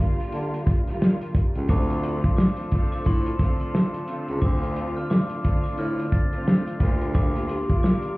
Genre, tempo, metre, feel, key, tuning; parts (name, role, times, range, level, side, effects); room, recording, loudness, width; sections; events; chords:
hip hop, boom-bap hip-hop; 88 BPM; 4/4; swing 60% on 16ths; D minor; A4 = 441 Hz
warm studio string section; accompaniment; 0.0-8.2 s; D3 to F4; -30 LUFS; right 1 dB; high-pass filter, low-pass filter
warm analog pad; sustained chords; 0.0-8.2 s; D4 to F5; -40 LUFS; equal
warm soul drum kit; drums; 0.2-8.2 s; hi-hat, kick drum, snare drum; -22 LUFS; equal
breathy baritone saxophone; bass; 0.3-7.6 s; C#2 to D3; -27 LUFS; equal
glockenspiel with brass mallets; melody; 1.7-8.2 s; C6 to A6; -34 LUFS; left 1 dB; high-pass filter, low-pass filter, tape echo
warm saxophone section; stabs; 1.7-8.2 s; F3 to Bb4; -37 LUFS; left 3 dB; high-pass filter, low-pass filter, tape echo
light reverb; heard muffled through a wall, club reverb, vinyl crackle, EQ; -21 LUFS; side -22 dB against mid
0.0-8.2 A section
break 0.0-1.7
0.0 Gm7/D; 1.7 Dm7; 6.8 Gm7/D